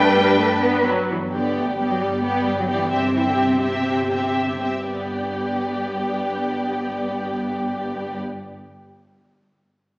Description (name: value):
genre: quick classical-period movement for string orchestra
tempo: 114-134 BPM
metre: 4/4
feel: rubato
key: G major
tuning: A4 = 440 Hz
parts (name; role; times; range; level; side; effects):
- rich studio violin section; melody; 0.0-8.2 s; D5 to G5; -28 LUFS; left 1 dB; none
- warm studio violin section; second line; 0.0-8.2 s; D4 to B4; -23 LUFS; equal; none
- rich studio viola section; accompaniment; 0.0-8.2 s; F#3 to C4; -25 LUFS; equal; none
- rich studio cello section; bass; 0.0-8.2 s; G2 to B4; -26 LUFS; equal; none
- rich studio double bass section; bass; 0.0-8.2 s; G1 to G2; -30 LUFS; equal; none
room: wet recital hall reverb, RT60 1.6 s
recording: recorded in a church or concert hall, small speaker sound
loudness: -19 LUFS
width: side -26 dB against mid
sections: 0.0-1.1 A section; 1.1-4.9 B section; 4.9-9.0 C section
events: slowing down 0.1-4.9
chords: 0.0 G; 2.9 C/G; 4.9 G